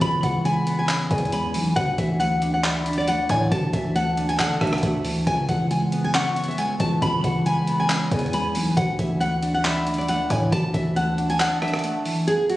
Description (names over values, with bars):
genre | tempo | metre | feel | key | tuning
hip hop, trap | 137 BPM | 4/4 | half-time | unclear | A4 = 440 Hz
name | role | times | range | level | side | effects
nylon-string guitar | melody | 0.0-12.6 s | F#4 to B5 | -24 LUFS | left 1 dB | digital delay
mellow electric guitar | accompaniment | 0.0-12.3 s | C#3 to D5 | -25 LUFS | right 1 dB | none
growling 808-style bass | bass | 0.0-11.4 s | B1 to D3 | -28 LUFS | equal | none
boom bap sampler-style drum kit | drums | 0.0-12.6 s | handclaps, hi-hat, kick drum, rim click | -27 LUFS | equal | none
silver concert flute | second line | 0.5-12.2 s | G#5 to C#6 | -32 LUFS | equal | digital delay
room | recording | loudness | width
little or no reverb | recorded on a phone in the room, studio reverb, compression | -20 LUFS | side -16 dB against mid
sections
0.0-12.3 A section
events
kick muted 11.4-12.3, 12.3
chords
0.0 C#m7; 1.8 Dsus2; 5.3 C#m7; 8.8 Dsus2